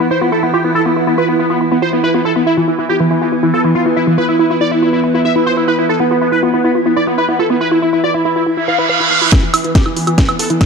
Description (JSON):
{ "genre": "psychedelic trance", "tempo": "140 BPM", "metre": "4/4", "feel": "straight", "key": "unclear", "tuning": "A4 = 440 Hz", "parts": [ { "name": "wide unison lead", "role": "melody", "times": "0.0-10.7 s", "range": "E3 to F5", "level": "-15 LUFS", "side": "left 1 dB", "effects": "phaser, cassette tape, sidechain pumping, digital delay" }, { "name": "evolving wavetable pad", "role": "sustained chords", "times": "0.0-10.7 s", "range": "E3 to E4", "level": "-20 LUFS", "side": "right 1 dB", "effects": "chorus, built-in reverb, sidechain pumping" }, { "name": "woody wave-folded pluck", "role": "riff", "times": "0.0-10.6 s", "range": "E4 to B4", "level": "-18 LUFS", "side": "moving between left 3 dB and right 3 dB", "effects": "chorus, auto-pan, sidechain pumping, tape echo" }, { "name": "deep dark ambient pad", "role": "texture", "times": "0.0-10.7 s", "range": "E4 to B5", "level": "-20 LUFS", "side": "right 3 dB", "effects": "chorus, built-in reverb, sidechain pumping" }, { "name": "reverse cymbal and riser", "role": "sound effects", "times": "8.6-10.7 s", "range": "none", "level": "-17 LUFS", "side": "right 6 dB", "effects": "none" }, { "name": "electronic kick drum", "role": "drums", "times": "9.3-10.7 s", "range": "none", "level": "-11 LUFS", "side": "equal", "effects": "none" }, { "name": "techno drum kit", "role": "drums", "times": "9.3-10.7 s", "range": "hi-hat, snare drum, woodblock", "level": "-16 LUFS", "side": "right 1 dB", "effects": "overdrive, low-pass filter on snare, low-pass filter on hats, low-pass filter on perc" } ], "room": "moderate lush hall reverb, RT60 2.1 s", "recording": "dark, warm production", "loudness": "-11 LUFS", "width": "side -5 dB against mid", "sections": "0.0-9.3 A section; 9.3-10.7 B section", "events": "reverse cymbal 8.6-9.3; build-up 9.3-10.7; drum fill 9.3-10.7; riser 9.3-10.7", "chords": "0.0 E5" }